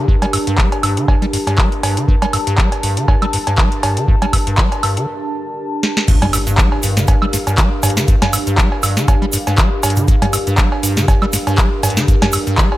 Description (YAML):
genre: acid house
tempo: 120 BPM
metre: 4/4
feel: swing 55% on 16ths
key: G minor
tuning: A4 = 443 Hz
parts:
  - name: dark analog pad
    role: sustained chords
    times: 0.0-12.8 s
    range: D4 to A5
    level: -22 LUFS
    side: equal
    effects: chorus, phaser, sidechain pumping
  - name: acid bass, square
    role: riff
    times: 0.0-12.7 s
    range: G2 to G3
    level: -19 LUFS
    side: equal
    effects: analog chorus, analog delay
  - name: electronic kick drum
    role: drums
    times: 0.1-12.7 s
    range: none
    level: -14 LUFS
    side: equal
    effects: none
  - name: booming analog drum machine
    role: drums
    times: 0.2-12.8 s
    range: cowbell, crash cymbal, handclaps, hi-hat, snare drum, toms, woodblock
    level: -18 LUFS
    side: right 1 dB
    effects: none
  - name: egg shaker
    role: percussion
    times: 6.1-12.7 s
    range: none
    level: -26 LUFS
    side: right 5 dB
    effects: none
  - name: impact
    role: sound effects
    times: 6.1-8.1 s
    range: none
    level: -25 LUFS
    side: equal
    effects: none
room: little or no reverb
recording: none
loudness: -13 LUFS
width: side -16 dB against mid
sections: 0.0-6.1 A section; 6.1-12.8 B section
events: break 5.1-6.1; drum fill 5.8; drop 6.1-12.8; impact 6.1-8.1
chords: 0.0 Gm; 6.1 Gm7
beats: | 0.08 0.58 1.08 1.58 | 2.08 2.58 3.08 3.58 | 4.08 4.58 5.08 5.58 | 6.08 6.58 7.08 7.58 | 8.08 8.58 9.08 9.58 | 10.08 10.58 11.08 11.58 | 12.08 12.58